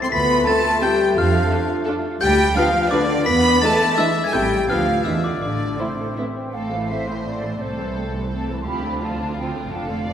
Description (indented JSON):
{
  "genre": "cinematic, playful, whimsical film cue",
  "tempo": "170 BPM",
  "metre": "3/4",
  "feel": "straight",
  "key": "A minor",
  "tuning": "A4 = 440 Hz",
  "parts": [
    { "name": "glockenspiel with hard plastic mallets", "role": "melody", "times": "0.0-6.1 s", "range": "C6 to C7", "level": "-25 LUFS", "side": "left 4 dB", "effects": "none" },
    { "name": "mellow flute section", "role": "second line", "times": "0.0-10.1 s", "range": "C5 to C6", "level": "-28 LUFS", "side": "right 3 dB", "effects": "none" },
    { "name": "warm chamber violin section", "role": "second line", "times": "0.0-10.1 s", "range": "C4 to C6", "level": "-26 LUFS", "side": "equal", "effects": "none" },
    { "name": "warm clarinet", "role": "second line", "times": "0.0-6.3 s", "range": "C4 to F4", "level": "-32 LUFS", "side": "equal", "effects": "none" },
    { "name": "mellow bassoon", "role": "accompaniment", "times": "0.0-6.5 s", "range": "G#3 to E4", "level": "-28 LUFS", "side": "equal", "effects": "none" },
    { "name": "mellow French horn section", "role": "sustained chords", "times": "0.0-6.2 s", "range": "C4 to C5", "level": "-23 LUFS", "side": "left 4 dB", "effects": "none" },
    { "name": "warm chamber cello section", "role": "bass", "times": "0.0-10.1 s", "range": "C2 to C4", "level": "-26 LUFS", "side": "right 1 dB", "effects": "none" },
    { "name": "dark chamber double bass section", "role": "bass", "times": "0.1-10.1 s", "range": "F1 to F2", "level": "-26 LUFS", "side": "right 2 dB", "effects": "none" },
    { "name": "warm studio violin section", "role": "melody", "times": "0.5-10.1 s", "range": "E4 to D5", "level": "-34 LUFS", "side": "left 3 dB", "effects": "none" },
    { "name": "warm studio viola section", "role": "accompaniment", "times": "0.5-10.1 s", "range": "D3 to F4", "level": "-30 LUFS", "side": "right 1 dB", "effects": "none" }
  ],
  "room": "wet concert hall reverb, RT60 2.2 s",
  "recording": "none",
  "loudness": "-18 LUFS",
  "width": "side -9 dB against mid",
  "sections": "0.0-6.5 A section; 6.5-10.1 B section",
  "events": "none",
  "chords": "0.1 Dm7; 1.2 Dm/F; 2.2 Bdim/D; 3.3 E7; 4.3 Am; 4.7 Bdim/D; 5.0 E7; 5.4 Am; 7.6 Am/C; 8.7 Dm7",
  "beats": "| 0.11 0.47 0.81 | 1.17 1.51 1.87 | 2.22 2.57 2.92 | 3.27 3.62 3.98 | 4.33 4.69 5.05 | 5.42 5.79 6.17 | 6.54 6.89 7.25 | 7.60 7.96 8.31 | 8.66 9.01 9.36 | 9.71 10.07"
}